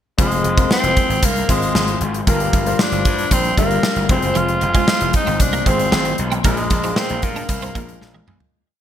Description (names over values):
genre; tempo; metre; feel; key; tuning
1980s-style pop; 115 BPM; 4/4; straight; F dorian; A4 = 440 Hz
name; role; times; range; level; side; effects
raspy tenor saxophone; melody; 0.2-8.3 s; Ab3 to F4; -20 LUFS; equal; ping-pong delay
clear baby grand piano; accompaniment; 0.2-8.6 s; G2 to C5; -23 LUFS; left 4 dB; lush chorus
gritty slap bass; bass; 0.2-8.4 s; F1 to Bb2; -23 LUFS; equal; overdrive
gated 80s drum kit; drums; 0.2-8.5 s; hi-hat, kick drum, snare drum, toms; -19 LUFS; equal; gated reverb
twelve-string electric guitar; riff; 4.4-8.4 s; F3 to D4; -26 LUFS; right 7 dB; ensemble chorus
room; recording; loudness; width
moderate plate reverb, RT60 2.1 s; bright 1980s-style digital production; -15 LUFS; side -10 dB against mid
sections
0.2-8.5 verse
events
fade-out 6.4-8.5; drum fill 8.0-8.5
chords
0.2 Fm; 2.3 Gm7; 4.1 Fm; 6.4 Bb7